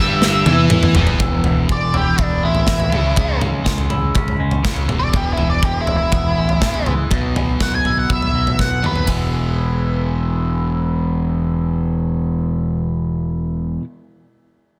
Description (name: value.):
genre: quiet-loud alternative rock.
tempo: 122 BPM.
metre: 4/4.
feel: straight.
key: E major.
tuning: A4 = 441 Hz.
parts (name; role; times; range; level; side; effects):
octave-fuzz lead guitar; melody; 0.0-9.1 s; D4 to G#5; -24 LUFS; equal; distortion, digital delay.
crunchy overdriven guitar; riff; 0.0-13.8 s; E2 to E4; -24 LUFS; equal; spring reverb.
high-gain distorted guitar; riff; 0.0-1.2 s; E2 to E4; -26 LUFS; equal; distortion.
thick fuzz guitar; riff; 0.0-1.2 s; E2 to E4; -26 LUFS; equal; none.
growling fingered electric bass; bass; 0.0-13.8 s; E1 to E2; -24 LUFS; equal; overdrive.
big rock drum kit; drums; 0.2-9.2 s; kick drum, ride cymbal, snare drum, toms; -21 LUFS; equal; soft clipping on snare.
twangy electric guitar; arpeggios; 1.2-13.8 s; B2 to E4; -30 LUFS; equal; phaser.
room: light reverb, studio reverb.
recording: dense, heavily limited modern master.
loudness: -18 LUFS.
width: mono.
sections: 0.0-1.2 A section; 1.2-9.1 B section; 9.1-13.0 C section.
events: drum fill 0.2-1.2, 8.6-9.1; lead electric guitar solo 1.2-9.1.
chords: 0.0 N.C.; 1.2 E; 2.9 C#m; 4.9 E; 7.1 Bsus4; 9.1 E.